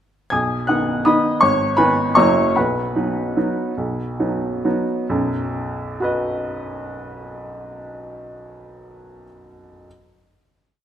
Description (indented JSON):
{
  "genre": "classical, piano waltz",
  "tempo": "128-171 BPM",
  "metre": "3/4",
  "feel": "rubato",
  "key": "B major",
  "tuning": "A4 = 436 Hz",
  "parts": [
    { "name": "clear upright piano", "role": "solo", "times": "0.3-9.9 s", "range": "F#1 to G#6", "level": "-18 LUFS", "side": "equal", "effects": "none" }
  ],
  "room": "moderate recital hall reverb, RT60 1.5 s",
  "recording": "faint mains hum",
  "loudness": "-17 LUFS",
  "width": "side -9 dB against mid",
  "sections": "0.3-5.1 A section; 5.1-7.8 final chord",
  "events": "slowing down 2.0-5.1",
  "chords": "0.3 B; 1.4 G#m; 2.2 F#7; 2.6 B",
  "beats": "| 0.32 0.69 1.07 | 1.44 1.79 2.17 | 2.56 2.95 3.36 | 3.77 4.20 4.65 | 5.11 5.54 6.00 | 6.45 6.89 7.34"
}